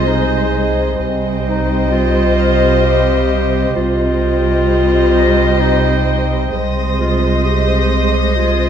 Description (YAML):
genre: cinematic, suspense film score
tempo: 65 BPM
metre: 3/4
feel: straight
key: C minor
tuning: A4 = 440 Hz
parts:
  - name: muted chamber violin section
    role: melody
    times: 0.0-8.7 s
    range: Eb5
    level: -22 LUFS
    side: left 2 dB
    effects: none
  - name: muted chamber violin section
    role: second line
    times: 0.0-8.7 s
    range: C5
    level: -22 LUFS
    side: equal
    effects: none
  - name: warm clarinet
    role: second line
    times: 0.0-8.7 s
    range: Eb4 to G4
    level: -19 LUFS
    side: left 3 dB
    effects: none
  - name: muted chamber viola section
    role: accompaniment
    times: 0.0-8.7 s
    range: G3 to Ab3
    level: -24 LUFS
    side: right 4 dB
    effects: none
  - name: glass harmonica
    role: sustained chords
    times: 0.0-8.7 s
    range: C5 to C6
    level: -23 LUFS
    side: right 2 dB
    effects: none
  - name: muted chamber cello section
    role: bass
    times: 0.0-8.7 s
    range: C3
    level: -22 LUFS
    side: right 2 dB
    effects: none
  - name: muted chamber double bass section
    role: bass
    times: 0.0-8.7 s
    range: C2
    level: -20 LUFS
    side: right 3 dB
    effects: none
  - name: warm sub bass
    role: drone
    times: 0.0-8.7 s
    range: C2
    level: -20 LUFS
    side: equal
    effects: none
  - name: concert harp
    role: texture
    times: 0.0-8.7 s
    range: F5 to Bb6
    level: -27 LUFS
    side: left 4 dB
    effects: none
  - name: muted chamber violin section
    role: texture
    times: 0.0-0.5, 6.5-8.7 s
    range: C6 to Bb6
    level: -24 LUFS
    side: left 3 dB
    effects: none
room: wet concert hall reverb, RT60 2.4 s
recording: none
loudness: -12 LUFS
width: side -8 dB against mid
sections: 0.0-8.7 A section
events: none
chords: 0.0 Ab/C; 1.0 Cm; 6.5 Ab/C